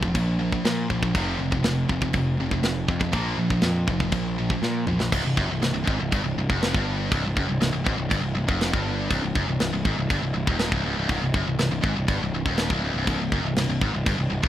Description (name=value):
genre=heavy metal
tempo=121 BPM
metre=4/4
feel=straight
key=C minor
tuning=A4 = 440 Hz
part: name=heavy high-gain guitar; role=riff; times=0.0-14.5 s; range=C2 to Bb3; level=-26 LUFS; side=equal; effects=distortion
part: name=fuzz picked electric bass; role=bass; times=0.0-14.5 s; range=C1 to Bb2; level=-27 LUFS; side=equal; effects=overdrive
part: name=tight metal drum kit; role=drums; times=0.0-14.5 s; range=crash cymbal, kick drum, snare drum, toms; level=-27 LUFS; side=equal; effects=none
room=studio ambience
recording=rough home demo mix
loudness=-22 LUFS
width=side -12 dB against mid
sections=0.0-5.1 A section; 5.1-14.5 B section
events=drum fill 4.6-5.1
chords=0.0 Bb5; 1.1 F5; 3.1 Bb5; 5.1 C5